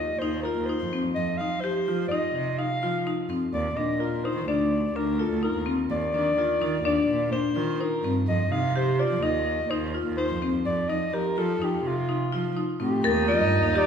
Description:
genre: contemporary instrumental, chamber music in an uneven meter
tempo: 126 BPM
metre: 5/4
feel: straight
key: F mixolydian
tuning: A4 = 440 Hz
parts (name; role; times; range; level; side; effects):
- breathy soprano saxophone; melody; 0.0-13.9 s; F4 to F5; -28 LUFS; left 1 dB; none
- marimba with hard mallets; arpeggios; 0.0-13.9 s; C4 to Bb4; -27 LUFS; left 4 dB; none
- warm cello; bass; 0.0-13.9 s; D2 to F3; -29 LUFS; right 4 dB; none
- rich viola; second line; 13.0-13.9 s; Eb4; -28 LUFS; right 5 dB; none
- crotales; texture; 13.1-13.9 s; A6; -30 LUFS; left 5 dB; none
room: wet recital hall reverb, RT60 1.7 s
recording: recorded in a church or concert hall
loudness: -23 LUFS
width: side -7 dB against mid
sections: 0.0-13.0 A section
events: none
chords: 0.0 F5; 3.5 Ebmaj7(no3); 8.3 F7(no3); 13.0 Eb

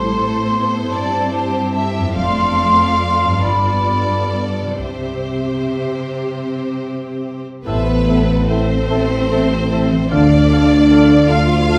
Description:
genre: classical, slow romantic movement for symphony orchestra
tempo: 41-52 BPM (dotted quarters)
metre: 6/8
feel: rubato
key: C major, A minor from 7.7 s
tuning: A4 = 440 Hz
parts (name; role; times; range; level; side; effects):
- rich studio violin section; melody; 0.0-11.8 s; B4 to F5; -27 LUFS; equal; none
- clear chamber violin section; second line; 0.0-11.8 s; G4 to F5; -31 LUFS; equal; none
- mellow hollow large flute ensemble; second line; 0.0-11.8 s; D5 to C6; -22 LUFS; equal; none
- warm studio viola section; accompaniment; 0.0-11.8 s; A3 to F5; -28 LUFS; equal; none
- concert harp; arpeggios; 0.0-11.8 s; F2 to A5; -25 LUFS; equal; none
- rich studio cello section; bass; 0.0-11.8 s; F2 to F4; -25 LUFS; equal; none
- rich studio double bass section; bass; 0.0-11.8 s; F1 to D2; -24 LUFS; equal; none
- dark French horn section; sustained chords; 7.6-11.8 s; B3 to F4; -18 LUFS; equal; none
- dark clarinet; second line; 7.7-11.8 s; A4; -33 LUFS; equal; none
- warm oboe; second line; 7.7-11.8 s; E5 to F5; -30 LUFS; equal; none
- mellow bassoon; accompaniment; 7.7-11.8 s; A2 to D3; -30 LUFS; equal; none
- mellow tuba; bass; 7.7-11.8 s; A1 to D2; -24 LUFS; equal; none
room: wet stone room reverb, RT60 1.5 s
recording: heard from further back in the room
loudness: -16 LUFS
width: mono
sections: 0.0-7.7 A section; 7.7-11.8 B section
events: none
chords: 0.0 Am7; 2.1 Dm/F; 3.4 G7; 4.8 C; 7.7 Am; 10.1 Dm

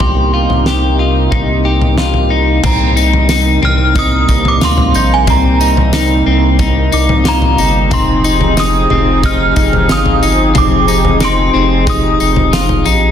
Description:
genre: dream pop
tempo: 91 BPM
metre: 4/4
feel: straight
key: C minor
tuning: A4 = 441 Hz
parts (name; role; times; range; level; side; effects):
- synth chime; melody; 0.0-12.8 s; Ab5 to F6; -17 LUFS; right 2 dB; ensemble chorus, phaser, ping-pong delay
- warm analog pad; sustained chords; 0.0-13.1 s; C3 to Ab4; -16 LUFS; equal; chorus
- electric guitar at the edge of break-up; arpeggios; 0.0-13.1 s; C4 to G4; -16 LUFS; left 5 dB; wide subtle chorus, ping-pong delay
- round analog bass; bass; 0.0-13.1 s; F1 to D2; -15 LUFS; equal; none
- loose indie drum kit; drums; 0.0-13.0 s; crash cymbal, kick drum, snare drum, tambourine, toms; -16 LUFS; left 1 dB; none
- synth chime; texture; 2.7-12.5 s; Bb5 to D7; -28 LUFS; right 5 dB; ensemble chorus, tremolo, ping-pong delay
room: moderate lush hall reverb, RT60 1.9 s, small room ambience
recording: dense, heavily limited modern master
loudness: -9 LUFS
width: side -9 dB against mid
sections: 0.0-2.6 A section; 2.6-13.1 B section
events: none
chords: 0.0 Cm7; 7.9 Fm7

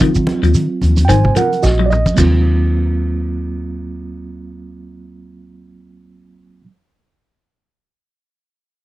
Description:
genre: afrobeat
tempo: 110 BPM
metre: 4/4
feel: swing 56% on 16ths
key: Eb dorian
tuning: A4 = 440 Hz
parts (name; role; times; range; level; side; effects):
- mellow reed electric piano; accompaniment; 0.0-6.6 s; Gb3 to Ab5; -20 LUFS; right 4 dB; fast tremolo
- semi-hollow electric guitar; arpeggios; 0.0-2.2 s; Eb3 to Gb3; -19 LUFS; left 5 dB; none
- vintage drum kit; drums; 0.0-2.3 s; crash cymbal, hi-hat, kick drum, snare drum, toms; -20 LUFS; equal; none
- shekere; percussion; 0.1-2.3 s; none; -23 LUFS; right 2 dB; none
- hollow-body short-scale fingered electric bass; bass; 0.2-6.6 s; Bb1 to Eb3; -16 LUFS; equal; none
- congas; percussion; 0.3-2.3 s; none; -22 LUFS; equal; none
room: light reverb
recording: dry, close 1970s-style studio recording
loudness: -12 LUFS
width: side -16 dB against mid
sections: 0.0-2.2 A section; 2.2-6.5 B section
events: reed electric piano solo 0.0-2.2; drum fill 1.6-2.2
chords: 0.0 Ebm69

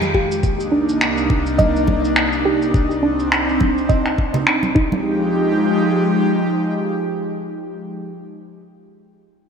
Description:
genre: sunset chillout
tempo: 104 BPM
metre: 4/4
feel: swing 57% on 16ths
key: F dorian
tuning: A4 = 441 Hz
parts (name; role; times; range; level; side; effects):
- airy breathy pad; sustained chords; 0.0-8.1 s; C2 to G4; -18 LUFS; equal; chorus
- cabasa and finger snaps; drums; 0.0-4.7 s; none; -21 LUFS; equal; low-pass filter on perc, low-pass filter on snare, low-pass filter on room, gated reverb
- congas; percussion; 0.0-5.0 s; none; -26 LUFS; right 3 dB; none
- soft round pluck; arpeggios; 0.1-5.3 s; D4 to Eb5; -23 LUFS; right 1 dB; chorus, ping-pong delay
- electronic kick drum; drums; 0.1-4.9 s; none; -18 LUFS; left 1 dB; none
room: wet lush hall reverb, RT60 2.8 s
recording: bright 1980s-style digital production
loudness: -15 LUFS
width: side -6 dB against mid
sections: 0.0-5.0 A section; 5.0-7.3 B section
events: none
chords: 0.4 Cm9; 4.8 Fm9

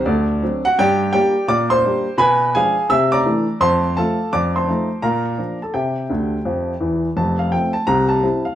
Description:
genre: jazz, stride piano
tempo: 169 BPM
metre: 4/4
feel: swing 65% on 8ths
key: F major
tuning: A4 = 440 Hz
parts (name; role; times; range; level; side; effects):
- warm baby grand piano; solo; 0.0-8.6 s; F1 to E6; -16 LUFS; equal; none
room: wet studio reverb, RT60 0.6 s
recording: band playing live in one room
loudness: -16 LUFS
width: side -11 dB against mid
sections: 0.0-7.2 A section; 7.2-8.6 B section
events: grand piano fill 6.1-7.2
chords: 0.1 D7; 0.8 Gm; 1.5 Gm/Bb; 2.2 Bdim7; 2.9 C13; 3.6 F; 4.3 F7; 5.0 Bb; 5.7 C; 7.2 F; 7.9 C

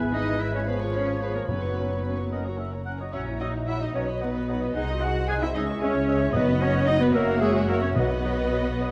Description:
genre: quick classical-period movement for symphony orchestra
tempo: 74 BPM (dotted quarters)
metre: 6/8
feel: straight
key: B major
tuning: A4 = 440 Hz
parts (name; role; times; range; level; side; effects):
- hollow large flute ensemble; second line; 0.0-8.9 s; G#4 to G#5; -39 LUFS; equal; none
- mellow oboe; second line; 0.0-8.9 s; B4 to F#5; -38 LUFS; equal; none
- muted chamber violin section; second line; 0.0-8.9 s; A#4 to C#6; -41 LUFS; equal; none
- muted chamber viola section; accompaniment; 0.0-8.9 s; C#4 to D#5; -37 LUFS; equal; none
- warm bassoon; accompaniment; 0.0-8.9 s; E3 to G#3; -37 LUFS; equal; none
- dark French horn section; sustained chords; 0.0-8.9 s; E#4 to E5; -36 LUFS; equal; none
- muted chamber double bass section; bass; 0.0-8.9 s; F#1 to C#2; -32 LUFS; equal; none
- muted studio cello section; bass; 0.0-8.9 s; G#3 to G#4; -31 LUFS; equal; none
- muted chamber violin section; melody; 0.1-8.9 s; G#4 to G#5; -38 LUFS; equal; none
- mellow clarinet; second line; 0.1-8.9 s; G#4 to G#5; -36 LUFS; equal; none
- timpani; percussion; 1.5-2.3, 6.3-8.8 s; F#2 to B2; -34 LUFS; equal; none
room: moderate recital hall reverb, RT60 1.6 s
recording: vinyl crackle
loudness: -25 LUFS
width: mono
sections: 0.0-8.9 A section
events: none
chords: 0.0 E/G#; 0.7 C#7/G#; 1.5 F#sus4; 2.3 F#; 3.1 F#7/A#; 3.9 B; 4.8 G#7/B#; 5.5 C#m; 6.3 B/F#; 7.1 F#7; 8.0 B

